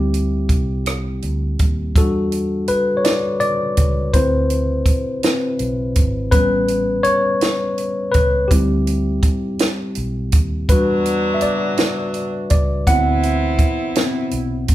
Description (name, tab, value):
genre	slow six-eight R&B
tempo	55 BPM (dotted quarters)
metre	6/8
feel	straight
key	unclear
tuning	A4 = 439 Hz
part	tine electric piano	accompaniment	0.0-14.7 s	F#3 to F#5	-19 LUFS	left 1 dB	none
part	vintage muted fingered electric bass	bass	0.0-14.7 s	G#1 to E2	-22 LUFS	equal	none
part	compact cocktail drum kit	drums	0.1-14.7 s	hi-hat, kick drum, rim click, snare drum	-17 LUFS	right 1 dB	none
part	warm horn section	stabs	10.7-14.7 s	E3 to F#4	-24 LUFS	right 1 dB	none
room	moderate large studio reverb, RT60 0.9 s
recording	band playing live in one room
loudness	-16 LUFS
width	side -14 dB against mid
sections	0.0-2.0 A section; 2.0-14.7 B section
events	tine electric piano solo 0.0-2.0, 2.0-14.7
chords	0.0 D9sus4; 2.0 Em9; 4.1 D13; 6.3 A9; 8.5 D9sus4; 10.7 Em9; 12.9 D13